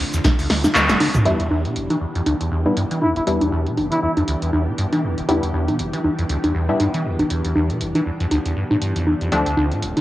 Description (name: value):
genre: acid house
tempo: 119 BPM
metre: 4/4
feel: swing 57% on 16ths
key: E phrygian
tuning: A4 = 435 Hz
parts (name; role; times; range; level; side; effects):
- string machine, full ensemble; sustained chords; 0.0-10.0 s; D3 to G4; -27 LUFS; equal; ensemble chorus, sidechain pumping
- acid bass, saw; riff; 0.0-10.0 s; D1 to E3; -23 LUFS; equal; lush chorus
- filtered dub chord stab; stabs; 0.0-9.5 s; F3 to E4; -23 LUFS; left 2 dB; chorus, analog delay
- electro analog drum machine; drums; 0.1-10.0 s; congas, handclaps, hi-hat, snare drum, toms; -20 LUFS; equal; cassette tape
- modern studio drum kit; drums; 0.1-1.0 s; hi-hat, ride cymbal, snare drum; -36 LUFS; equal; none
- tube shaker; percussion; 0.1-1.2 s; none; -36 LUFS; left 2 dB; none
- trumpet with bucket mute; melody; 3.0-4.1 s; E4; -24 LUFS; equal; cassette tape, tape echo
room: wet spring reverb, RT60 1.9 s, studio ambience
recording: home recording on cassette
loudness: -17 LUFS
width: side -15 dB against mid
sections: 0.0-1.3 A section; 1.3-10.0 B section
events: drop 0.0-1.3; drum fill 0.7-1.3; band accent 0.7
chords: 0.0 Dm7; 1.3 Em7; 9.3 Dm7